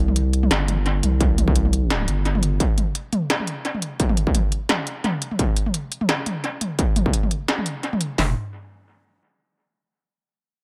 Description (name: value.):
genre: half-time drum and bass.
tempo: 172 BPM.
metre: 4/4.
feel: swing 56% on 16ths, half-time.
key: unclear.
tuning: A4 = 437 Hz.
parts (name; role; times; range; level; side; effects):
saturated sub bass; bass; 0.0-2.6, 8.2-8.3 s; F1 to C2; -22 LUFS; equal; none.
industrial drum kit; drums; 0.1-8.1 s; hi-hat, snare drum, toms; -26 LUFS; equal; tape echo.
industrial drum kit; drums; 1.2-8.3 s; hi-hat, kick drum, snare drum, toms; -23 LUFS; equal; distortion.
room: light reverb.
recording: echo-heavy mix.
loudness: -22 LUFS.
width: mono.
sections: 0.0-8.2 A section; 8.2-9.6 B section.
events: none.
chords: none.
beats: 0.16 0.51 0.86 | 1.21 1.55 1.90 2.25 | 2.60 2.95 3.30 3.65 | 4.00 4.35 4.70 5.04 | 5.39 5.74 6.09 6.44 | 6.79 7.14 7.49 7.83 | 8.18.